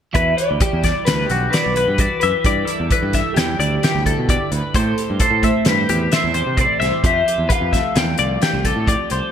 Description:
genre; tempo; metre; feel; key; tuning
math rock and midwest emo; 131 BPM; 5/4; straight; unclear; A4 = 440 Hz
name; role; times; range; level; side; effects
electric guitar through a small old amp; melody; 0.1-9.1 s; G4 to F5; -21 LUFS; left 1 dB; phaser, digital delay
twelve-string electric guitar; accompaniment; 0.1-9.3 s; G2 to B4; -26 LUFS; right 6 dB; lush chorus
growling fingered electric bass; bass; 0.1-9.2 s; B1 to C3; -22 LUFS; right 1 dB; overdrive
loose indie drum kit; drums; 0.1-9.2 s; hi-hat, kick drum, snare drum; -20 LUFS; equal; gated reverb
twelve-string electric guitar; arpeggios; 0.2-9.3 s; F#4 to G5; -22 LUFS; left 5 dB; analog chorus, digital delay
room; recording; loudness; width
light reverb, small room ambience; bright 1980s-style digital production; -15 LUFS; side -8 dB against mid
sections
0.2-9.3 A section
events
none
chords
0.2 Em9; 2.5 G69; 4.7 Am7; 7.0 Fmaj9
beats
| 0.16 0.61 1.07 1.53 1.99 | 2.45 2.91 3.37 3.83 4.29 | 4.75 5.20 5.66 6.12 6.58 | 7.04 7.50 7.96 8.41 8.87

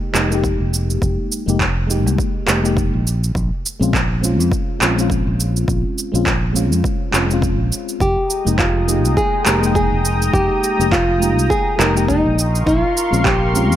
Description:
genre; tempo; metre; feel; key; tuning
sunset chillout; 103 BPM; 4/4; swing 57% on 16ths; F minor; A4 = 439 Hz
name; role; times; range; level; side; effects
mellow FM electric piano; accompaniment; 0.0-13.8 s; Ab3 to G5; -22 LUFS; left 2 dB; chorus, auto-pan, ping-pong delay
fingered electric bass; bass; 0.1-13.8 s; F1 to F2; -19 LUFS; equal; tube saturation
electronic handclaps and cabasa; drums; 0.1-13.8 s; none; -21 LUFS; right 2 dB; overdrive
bongos; percussion; 0.1-11.9 s; none; -27 LUFS; left 2 dB; none
electronic kick drum; drums; 0.4-13.4 s; none; -22 LUFS; equal; overdrive
nylon-string guitar; melody; 8.0-13.8 s; Eb4 to Bb4; -18 LUFS; equal; tape echo
lush unison pad; sustained chords; 8.0-13.8 s; Ab3 to Eb6; -24 LUFS; equal; chorus
room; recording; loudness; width
light reverb; none; -15 LUFS; side -12 dB against mid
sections
0.0-13.8 A section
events
none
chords
0.0 Fm11; 3.1 Bbm9; 8.0 Fm11; 12.4 Bbm9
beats
0.44 | 1.02 1.60 2.19 2.77 | 3.35 3.93 4.52 5.10 | 5.68 6.26 6.85 7.43 | 8.01 8.59 9.18 9.76 | 10.34 10.92 11.51 12.09 | 12.67 13.25

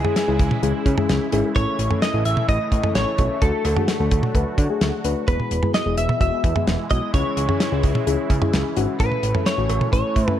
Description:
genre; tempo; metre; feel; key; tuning
synth-pop; 129 BPM; 4/4; straight; unclear; A4 = 440 Hz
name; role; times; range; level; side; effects
direct-recorded clean electric guitar; melody; 0.0-10.4 s; G#4 to E5; -25 LUFS; equal; analog chorus, tape echo
muted felt-like synth keys; accompaniment; 0.0-10.4 s; G#3 to B4; -25 LUFS; left 6 dB; chorus
sweeping resonant pad; sustained chords; 0.0-10.4 s; B2 to F#4; -30 LUFS; right 2 dB; chorus
fat analog bass; bass; 0.0-10.3 s; E1 to D3; -24 LUFS; right 1 dB; none
damped 70s drum kit; drums; 0.0-10.4 s; cowbell, hi-hat, kick drum, snare drum, toms; -22 LUFS; right 1 dB; none
room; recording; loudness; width
little or no reverb; none; -18 LUFS; side -11 dB against mid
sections
0.0-10.4 A section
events
none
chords
0.0 C#m; 1.6 A; 3.4 D; 5.3 E; 7.1 C#m; 9.0 A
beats
0.16 0.63 1.09 | 1.56 2.02 2.49 2.95 | 3.42 3.88 4.35 4.81 | 5.28 5.74 6.21 6.67 | 7.14 7.60 8.07 8.53 | 9.00 9.46 9.93 10.39

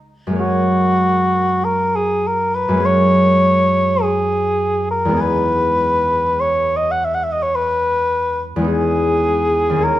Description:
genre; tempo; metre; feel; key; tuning
classical, impressionist duo for cor anglais and harp; 47-54 BPM; 4/4; rubato; unclear; A4 = 438 Hz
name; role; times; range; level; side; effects
concert harp; accompaniment; 0.3-10.0 s; D#2 to G#4; -19 LUFS; equal; none
dark cor anglais; melody; 0.4-10.0 s; F#4 to F#5; -16 LUFS; equal; none
room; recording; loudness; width
moderate stone room reverb, RT60 1.4 s; none; -14 LUFS; side -14 dB against mid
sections
0.0-10.0 A section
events
none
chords
0.4 F#add9; 5.2 Emaj7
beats
| 0.40 1.63 2.82 4.00 | 5.19 6.39 7.55 8.70 | 9.83

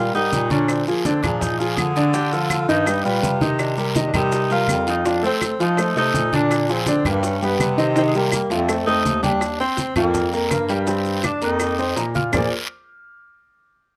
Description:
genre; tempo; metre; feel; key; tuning
Afro-Cuban jazz; 165 BPM; 4/4; straight; Bb major; A4 = 439 Hz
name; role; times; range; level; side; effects
warm tenor saxophone; melody; 0.0-12.5 s; Ab3 to Ab4; -27 LUFS; equal; none
warm concert grand piano; accompaniment; 0.0-12.5 s; D3 to F6; -23 LUFS; equal; none
bright bass clarinet; bass; 0.0-12.5 s; Eb2 to F3; -27 LUFS; equal; none
bongos; percussion; 0.1-12.4 s; none; -34 LUFS; equal; none
congas; percussion; 0.1-12.4 s; none; -30 LUFS; equal; none
maracas; percussion; 0.1-12.4 s; none; -38 LUFS; equal; none
guiro; percussion; 0.3-12.4 s; none; -33 LUFS; equal; none
claves; percussion; 0.7-12.4 s; none; -29 LUFS; equal; none
room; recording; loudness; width
light reverb; rough home demo mix; -20 LUFS; mono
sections
0.0-9.4 A section; 9.4-12.3 B section; 12.3-13.8 C section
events
drum fill 8.5-9.4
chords
0.0 Eb7; 0.7 Bb7; 2.1 Dm; 2.9 G7alt; 3.6 Cm7; 5.1 F7; 6.5 Bb9; 7.2 Gaug; 8.0 Cm7; 8.7 F9; 9.4 Ebsus2; 10.1 Fsus24; 10.9 G7sus4; 11.6 F7sus4; 12.3 Bb9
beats
0.33 | 0.69 1.05 1.42 1.78 | 2.14 2.51 2.87 3.23 | 3.60 3.96 4.32 4.69 | 5.05 5.42 5.78 6.14 | 6.51 6.87 7.23 7.60 | 7.96 8.32 8.69 9.05 | 9.42 9.78 10.14 10.51 | 10.87 11.24 11.60 11.97 | 12.33

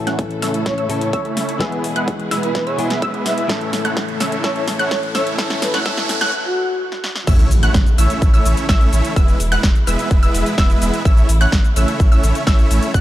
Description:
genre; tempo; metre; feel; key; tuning
EDM, festival progressive house; 127 BPM; 4/4; straight; A major; A4 = 440 Hz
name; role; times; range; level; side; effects
direct-recorded clean electric guitar; accompaniment; 0.0-6.3 s; A2 to A4; -25 LUFS; left 4 dB; sidechain pumping, dub echo
warm studio string section; sustained chords; 0.0-13.0 s; B2 to A4; -28 LUFS; equal; sidechain pumping
riser and impact; sound effects; 2.2-9.2 s; none; -26 LUFS; right 1 dB; none
wide unison pluck; arpeggios; 0.1-13.0 s; E6 to F#6; -25 LUFS; equal; sidechain pumping, dub echo
supersaw chords; riff; 0.1-13.0 s; G#3 to F#5; -23 LUFS; right 1 dB; sidechain pumping, low-pass filter, dub echo
big-room dance drum kit; drums; 0.1-13.0 s; cabasa, crash cymbal, hi-hat, snare drum; -25 LUFS; equal; studio reverb
electronic kick drum; drums; 0.2-13.0 s; none; -15 LUFS; equal; high-pass filter on kick, studio reverb
breathy flute-like synth lead; melody; 0.7-7.1 s; F#4 to E5; -25 LUFS; equal; analog chorus, cassette tape, dub echo
saturated sub bass; bass; 7.3-13.0 s; E1 to D2; -18 LUFS; equal; sidechain pumping
room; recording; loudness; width
light reverb, digital ambience; dark, warm production, high-pass filter; -14 LUFS; side -14 dB against mid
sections
0.0-7.3 A section; 7.3-13.0 B section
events
build-up 0.0-7.3; drum fill 0.0-6.3, 6.9-7.3; filter sweep on supersaw synth 0.0-7.3; filter sweep 0.0-7.3; riser 2.2-6.3; break 6.3-7.3; drop 7.3-13.0; impact 7.3-9.2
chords
0.0 A; 1.6 E; 3.5 A; 5.4 D; 7.3 A; 9.2 E; 11.1 A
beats
0.19 0.66 1.13 | 1.60 2.08 2.55 3.02 | 3.50 3.97 4.44 4.91 | 5.38 5.86 6.33 6.80 | 7.27 7.75 8.22 8.69 | 9.16 9.64 10.11 10.58 | 11.05 11.53 12.00 12.47 | 12.94

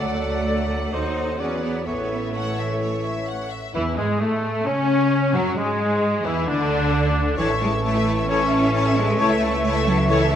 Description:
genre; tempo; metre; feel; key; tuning
classical; 132 BPM; 4/4; straight; A major; A4 = 440 Hz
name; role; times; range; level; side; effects
rich studio violin section; melody; 0.0-10.4 s; G#3 to A5; -32 LUFS; left 5 dB; none
mellow cor anglais; second line; 0.0-10.4 s; E3 to D5; -29 LUFS; right 1 dB; none
rich symphonic violin section; second line; 0.0-10.4 s; G#3 to F#5; -32 LUFS; left 6 dB; none
silver concert flute; second line; 0.0-10.4 s; C#4 to F#5; -33 LUFS; left 2 dB; none
warm clarinet; second line; 0.0-10.4 s; D3 to A4; -33 LUFS; left 2 dB; none
mellow bassoon; accompaniment; 0.0-10.4 s; D3 to C#4; -30 LUFS; right 2 dB; none
rich symphonic viola section; accompaniment; 0.0-10.4 s; D3 to A4; -31 LUFS; equal; none
mellow French horn section; sustained chords; 0.0-10.2 s; D3 to D5; -29 LUFS; left 5 dB; none
clear symphonic double bass section; bass; 0.0-10.4 s; A1 to C#3; -26 LUFS; right 2 dB; none
rich symphonic cello section; bass; 0.0-10.4 s; D3 to D#4; -25 LUFS; right 1 dB; none
mellow trumpet section; stabs; 3.7-10.2 s; F#3 to C#5; -29 LUFS; left 3 dB; none
room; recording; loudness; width
moderate concert hall reverb, RT60 1.9 s; none; -19 LUFS; side -9 dB against mid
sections
0.0-3.8 A section; 3.8-10.4 B section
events
none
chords
0.0 D; 0.9 D#dim7; 1.4 E9; 1.9 A; 3.8 A/E; 5.6 E7; 7.4 A; 9.2 A/C#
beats
| 0.01 0.47 0.93 1.39 | 1.86 2.34 2.81 3.28 | 3.75 4.21 4.66 5.12 | 5.57 6.02 6.47 6.92 | 7.37 7.83 8.28 8.73 | 9.19 9.63 10.08

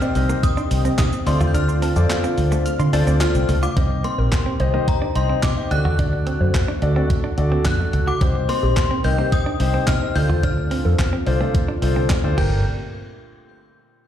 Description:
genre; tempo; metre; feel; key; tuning
dance-pop; 108 BPM; 4/4; straight; unclear; A4 = 440 Hz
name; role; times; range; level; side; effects
synth chime; melody; 0.0-12.6 s; Bb5 to G6; -29 LUFS; left 1 dB; ensemble chorus, phaser, tremolo, digital delay
warm concert grand piano; accompaniment; 0.0-12.6 s; C4 to Eb5; -25 LUFS; left 4 dB; sidechain pumping
warm analog pad; sustained chords; 0.0-12.6 s; Bb2 to G4; -29 LUFS; equal; chorus, sidechain pumping
direct-recorded clean electric guitar; riff; 0.0-12.5 s; A3 to G4; -30 LUFS; right 6 dB; lush chorus
crisp 8-bit digital drum machine; drums; 0.0-12.5 s; crash cymbal, handclaps, hi-hat, kick drum, shaker, snare drum; -22 LUFS; equal; none
vintage muted fingered electric bass; bass; 0.2-12.6 s; G1 to D3; -19 LUFS; equal; sidechain pumping
wide unison pluck; arpeggios; 0.3-3.7 s; D3 to G6; -30 LUFS; right 2 dB; sidechain pumping, digital delay
hollow square pluck; melody; 3.8-12.6 s; G4 to D5; -31 LUFS; left 1 dB; chorus, sidechain pumping, digital delay
room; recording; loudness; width
light reverb; played on a big sound system in a bare room, large studio reverb; -17 LUFS; side -10 dB against mid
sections
0.0-3.8 A section; 3.8-12.7 B section; 12.7-14.1 C section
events
kick muted 1.5-3.8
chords
0.0 Cm; 1.3 Dm7; 3.8 Cm; 5.7 D; 8.2 Cm; 10.2 Dm7; 12.4 Gmadd9; 12.7 N.C.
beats
0.43 0.99 | 1.54 2.10 2.66 3.21 | 3.77 4.32 4.88 5.43 | 5.99 6.54 7.10 7.66 | 8.21 8.77 9.32 9.88 | 10.43 10.99 11.54 12.10

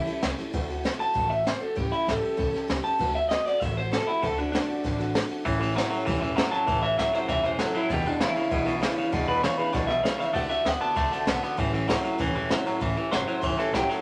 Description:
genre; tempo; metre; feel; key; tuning
rockabilly; 196 BPM; 4/4; straight; A mixolydian; A4 = 440 Hz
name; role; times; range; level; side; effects
electric guitar through a small old amp; melody; 0.0-14.0 s; D4 to A5; -29 LUFS; equal; none
picked steel-string acoustic guitar; accompaniment; 0.0-14.0 s; A2 to B4; -36 LUFS; equal; none
upright bass; bass; 0.0-13.9 s; E1 to D2; -36 LUFS; equal; none
jazz brush drum kit; drums; 0.1-14.0 s; kick drum, ride cymbal, snare drum; -32 LUFS; equal; none
twangy electric guitar; riff; 5.5-14.0 s; E2 to B3; -31 LUFS; equal; spring reverb
room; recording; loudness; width
moderate small room reverb, RT60 0.5 s; none; -26 LUFS; mono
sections
0.0-12.8 A section; 12.8-14.0 B section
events
clean electric guitar solo 0.0-12.8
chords
0.0 A7; 0.5 D7; 1.8 A7; 3.0 D7; 5.5 A7; 7.9 E7; 10.4 D7; 11.6 A7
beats
0.23 | 0.54 0.85 1.16 1.46 | 1.77 2.08 2.39 2.69 | 3.00 3.31 3.62 3.92 | 4.23 4.54 4.84 5.15 | 5.46 5.76 6.07 6.38 | 6.68 6.99 7.30 7.60 | 7.91 8.21 8.52 8.83 | 9.13 9.44 9.75 10.05 | 10.36 10.66 10.97 11.28 | 11.59 11.89 12.20 12.51 | 12.81 13.12 13.43 13.74

